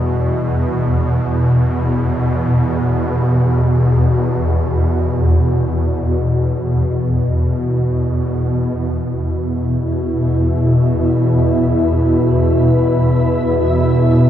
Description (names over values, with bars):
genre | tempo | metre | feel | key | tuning
dark ambient drone | free time | none | none | E minor | A4 = 439 Hz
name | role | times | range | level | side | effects
gamelan-type bronze metallophone | arpeggios | 0.0-9.6 s | G3 to G4 | -37 LUFS | equal | none
swarming drone | drone | 0.0-14.3 s | E2 to B2 | -14 LUFS | equal | built-in reverb
granular cloud pad | sustained chords | 9.3-14.3 s | E4 to E5 | -19 LUFS | equal | built-in reverb, shimmer reverb
flickering grainy texture | texture | 10.2-14.3 s | E5 | -34 LUFS | right 1 dB | built-in reverb, shimmer reverb
room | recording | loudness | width
wet cathedral reverb, RT60 6.5 s | dark, warm production | -14 LUFS | side -11 dB against mid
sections
0.0-8.6 A section; 8.6-14.3 B section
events
fade-in on synth texture 8.6-14.3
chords
0.0 Em